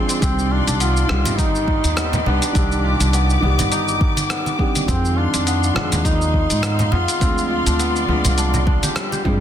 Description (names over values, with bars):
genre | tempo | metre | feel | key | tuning
organic downtempo | 103 BPM | 4/4 | swing 56% on 16ths | C harmonic minor | A4 = 440 Hz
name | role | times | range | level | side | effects
felt-muted upright piano | accompaniment | 0.0-9.4 s | Eb3 to D5 | -25 LUFS | right 2 dB | sidechain pumping, tape echo, shimmer reverb
clear studio string section | sustained chords | 0.0-9.4 s | G4 to D6 | -26 LUFS | left 2 dB | sidechain pumping, shimmer reverb
kora | arpeggios | 0.0-9.4 s | G3 to C5 | -27 LUFS | left 2 dB | tape echo, shimmer reverb
dusty soul sampler-style drum kit | drums | 0.1-9.2 s | cabasa, hi-hat, rim click | -25 LUFS | equal | soft clipping on snare
mellow duduk | melody | 0.2-9.0 s | C4 to F4 | -25 LUFS | equal | tape echo, shimmer reverb
upright bass | bass | 0.2-9.4 s | G1 to Ab2 | -20 LUFS | equal | none
electronic kick drum | drums | 0.2-9.4 s | none | -20 LUFS | equal | none
congas | percussion | 1.1-9.2 s | none | -25 LUFS | right 2 dB | none
room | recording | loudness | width
light reverb | dense, heavily limited modern master | -16 LUFS | side -10 dB against mid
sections
0.0-9.4 A section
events
none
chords
0.2 Cmadd9; 4.9 Fm7; 7.2 Dm7b5